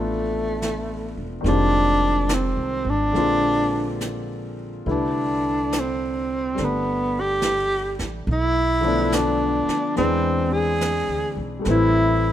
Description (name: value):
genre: jazz ballad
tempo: 71 BPM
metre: 4/4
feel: swing 67% on 8ths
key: unclear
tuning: A4 = 439 Hz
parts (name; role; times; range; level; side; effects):
- breathy tenor saxophone; melody; 0.0-12.3 s; A3 to G#4; -22 LUFS; right 1 dB; none
- clear grand piano; accompaniment; 0.0-12.3 s; D3 to B4; -26 LUFS; left 3 dB; none
- upright bass; bass; 0.0-12.3 s; E1 to E2; -26 LUFS; equal; none
- jazz brush drum kit; drums; 0.6-12.3 s; brushed snare drum, hi-hat, snare drum; -33 LUFS; right 2 dB; none
room: light reverb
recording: minimal, uncompressed stereo recording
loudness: -19 LUFS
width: side -11 dB against mid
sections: 0.0-12.3 A section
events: none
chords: 0.0 Dm11; 1.5 Fm7; 3.1 Bb9; 4.9 Cmaj13; 8.3 Bm7b5; 10.0 E7b13; 11.6 Am9